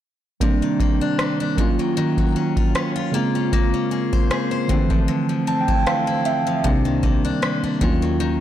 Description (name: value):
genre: contemporary R&B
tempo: 77 BPM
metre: 4/4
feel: swing 54% on 16ths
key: unclear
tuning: A4 = 440 Hz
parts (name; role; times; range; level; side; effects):
- muted felt-like synth keys; accompaniment; 0.4-8.4 s; Db3 to A5; -21 LUFS; right 2 dB; chorus
- picked steel-string acoustic guitar; arpeggios; 0.4-8.4 s; C3 to C5; -26 LUFS; left 8 dB; ping-pong delay
- booming analog drum machine; drums; 0.4-8.0 s; kick drum, rim click; -21 LUFS; equal; overdrive
- vintage muted fingered electric bass; bass; 6.6-8.4 s; C2 to Eb2; -24 LUFS; equal; transformer saturation
room: light reverb, digital ambience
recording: blown-out, overdriven recording, overdrive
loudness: -18 LUFS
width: side -11 dB against mid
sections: 0.4-8.4 A section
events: synth keys fill 5.1-6.6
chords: 0.4 Cm9; 1.6 Ebm9; 3.1 Bbm9; 4.7 Dm9; 6.6 Cm9; 7.8 Ebm9